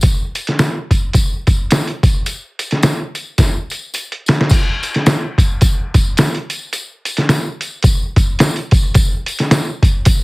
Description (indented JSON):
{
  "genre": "soul",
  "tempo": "108 BPM",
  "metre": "4/4",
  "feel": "swing 58% on 8ths",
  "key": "none",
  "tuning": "none",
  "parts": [
    { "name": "trip hop sampler-style drum kit", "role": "drums", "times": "0.0-10.2 s", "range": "crash cymbal, hi-hat, kick drum, snare drum", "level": "-13 LUFS", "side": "equal", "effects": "none" },
    { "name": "tambourine", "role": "percussion", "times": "0.0-10.2 s", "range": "none", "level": "-26 LUFS", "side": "left 2 dB", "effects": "none" }
  ],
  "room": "light reverb",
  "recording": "heavily compressed radio sound, multiband compression",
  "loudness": "-13 LUFS",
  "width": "side -24 dB against mid",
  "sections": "0.0-4.5 A section; 4.5-10.2 B section",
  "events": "drum fill 3.4-4.5",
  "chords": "none"
}